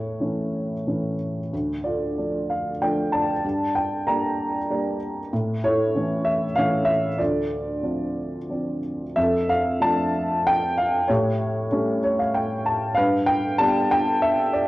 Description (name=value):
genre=classical, lyrical solo piano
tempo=94 BPM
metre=3/4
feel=uneven beats, rubato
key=D harmonic minor, F major from 9.2 s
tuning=A4 = 442 Hz
part: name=dark upright piano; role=solo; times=0.0-14.7 s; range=D2 to Bb5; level=-21 LUFS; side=equal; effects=none
room=moderate recital hall reverb, RT60 1.3 s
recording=worn, warbling old tape, cassette tape, warbly pitch drift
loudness=-21 LUFS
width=side -18 dB against mid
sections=0.0-9.2 A section; 9.2-14.7 B section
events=upright piano fill 11.7-13.0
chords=0.0 A; 1.5 Dm; 3.4 Gm; 5.3 A; 7.2 Dm7; 9.2 F6; 11.1 A7; 13.0 G